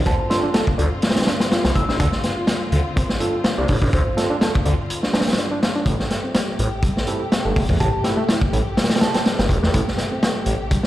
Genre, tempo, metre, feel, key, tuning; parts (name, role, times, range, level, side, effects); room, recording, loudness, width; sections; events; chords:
breakbeat, breaks; 124 BPM; 4/4; swing 55% on 16ths; A minor; A4 = 439 Hz
warm studio string section; sustained chords; 0.0-10.9 s; C3 to G4; -29 LUFS; left 2 dB; sidechain pumping
reed electric piano; riff; 0.0-10.8 s; G3 to D5; -26 LUFS; equal; vintage 12-bit sampler grit, ping-pong delay
phased detuned saw bass; bass; 0.0-10.5 s; E1 to E2; -20 LUFS; equal; phaser
glassy synth bell; melody; 0.1-2.0, 7.8-9.2 s; A5 to E6; -28 LUFS; right 2 dB; chorus, AM radio sound, ping-pong delay
vintage drum kit; drums; 0.1-10.9 s; hi-hat, kick drum, snare drum; -20 LUFS; equal
overdriven tine electric piano; stabs; 0.3-8.2 s; C4 to A4; -26 LUFS; right 2 dB; ping-pong delay
light reverb, studio reverb; played on a big sound system in a bare room, large studio reverb, vinyl crackle; -17 LUFS; side -14 dB against mid
0.0-10.9 A section
0.0 Dm7; 5.9 Am7